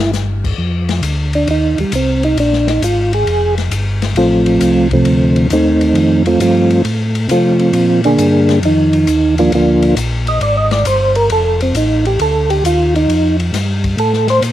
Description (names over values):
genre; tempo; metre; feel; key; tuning
soul jazz organ trio; 134 BPM; 4/4; swing 68% on 8ths; F mixolydian; A4 = 440 Hz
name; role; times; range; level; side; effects
percussive tonewheel organ; melody; 0.0-14.4 s; C3 to Eb5; -12 LUFS; right 1 dB; slow rotary speaker, chorus vibrato
tonewheel organ; bass; 0.0-14.5 s; F1 to C3; -16 LUFS; equal; chorus vibrato, slow rotary speaker
open jazz drum kit; drums; 0.1-14.5 s; crash cymbal, hi-hat, kick drum, ride cymbal, snare drum; -23 LUFS; left 6 dB; none
room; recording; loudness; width
little or no reverb; 1960s-style stereo; -11 LUFS; side -12 dB against mid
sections
0.6-14.5 A section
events
tonewheel organ solo 0.6-14.5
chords
0.0 N.C.; 0.6 F5; 2.4 Bb5; 4.2 F7; 7.7 Bb7; 11.3 F7